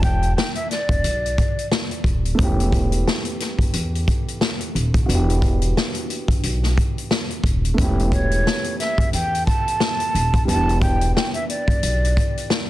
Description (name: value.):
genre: hip hop, boom-bap hip-hop.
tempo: 89 BPM.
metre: 4/4.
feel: swing 58% on 16ths.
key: E dorian.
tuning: A4 = 438 Hz.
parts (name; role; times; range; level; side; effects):
breathy mellow silver concert flute; melody; 0.0-1.7, 8.1-12.5 s; C#5 to A5; -24 LUFS; right 1 dB; high-pass filter, low-pass filter, digital delay.
upright bass; bass; 0.0-12.1 s; D#1 to E2; -21 LUFS; equal; none.
vintage drum kit; drums; 0.0-12.7 s; hi-hat, kick drum, snare drum; -21 LUFS; equal; none.
dark upright piano; accompaniment; 2.3-12.7 s; G3 to G4; -27 LUFS; right 2 dB; cassette tape, high-pass filter, low-pass filter.
room: small room ambience.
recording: dense, heavily limited modern master.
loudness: -18 LUFS.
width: side -15 dB against mid.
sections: 0.0-12.7 A section.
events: break 0.0-2.4.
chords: 0.0 E5; 2.4 A7/E; 5.1 Em7; 7.8 A7/E; 10.5 Em7.